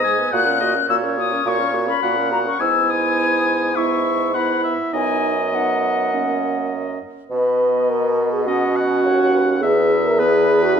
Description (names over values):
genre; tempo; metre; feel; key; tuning
quick classical-period movement for wind quintet; 104 BPM; 4/4; straight; B major; A4 = 441 Hz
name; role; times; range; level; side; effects
mellow concert flute; melody; 0.0-10.8 s; B4 to F#6; -22 LUFS; left 6 dB; none
clear oboe; second line; 0.0-10.8 s; B4 to G#5; -24 LUFS; left 2 dB; none
mellow French horn; accompaniment; 0.0-10.8 s; G#3 to B4; -21 LUFS; equal; none
warm clarinet; accompaniment; 0.0-10.8 s; B3 to B4; -25 LUFS; right 8 dB; none
warm bassoon; bass; 0.0-10.8 s; D#2 to B2; -23 LUFS; right 2 dB; none
room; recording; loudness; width
wet recital hall reverb, RT60 1.8 s; minimal, uncompressed stereo recording; -16 LUFS; side -7 dB against mid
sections
0.0-7.3 A section; 7.3-10.8 B section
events
none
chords
0.3 F#/A#; 2.6 E/G#; 4.9 B/F#; 6.1 F#; 7.3 B; 9.6 E